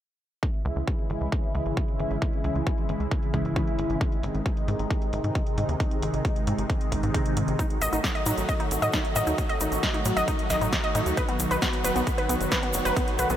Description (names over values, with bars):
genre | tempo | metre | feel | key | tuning
uplifting trance | 134 BPM | 4/4 | straight | C# minor | A4 = 441 Hz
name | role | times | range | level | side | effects
big-room dance drum kit | drums | 0.4-13.4 s | hi-hat, snare drum | -32 LUFS | equal | low-pass filter on hats, low-pass filter on snare
electronic kick drum | drums | 0.4-13.1 s | none | -27 LUFS | equal | none
tight sequencer bass | bass | 0.7-13.4 s | F#1 to A2 | -29 LUFS | equal | sidechain pumping
wide unison pluck | arpeggios | 7.6-13.4 s | B3 to D#5 | -27 LUFS | equal | sidechain pumping, analog delay
egg shaker | percussion | 7.6-13.4 s | none | -35 LUFS | left 1 dB | none
room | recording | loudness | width
moderate huge ambient reverb, RT60 5.1 s | dreamy mix soaked in reverb | -24 LUFS | side -11 dB against mid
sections
0.4-13.4 A section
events
filter sweep on analog synth bass 0.4-13.4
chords
0.4 C#m; 4.0 G#; 7.6 D#dim/A; 11.2 B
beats
| 0.43 0.88 1.32 1.77 | 2.22 2.67 3.11 3.56 | 4.01 4.46 4.91 5.35 | 5.80 6.25 6.70 7.14 | 7.59 8.04 8.49 8.94 | 9.38 9.83 10.28 10.73 | 11.17 11.62 12.07 12.52 | 12.96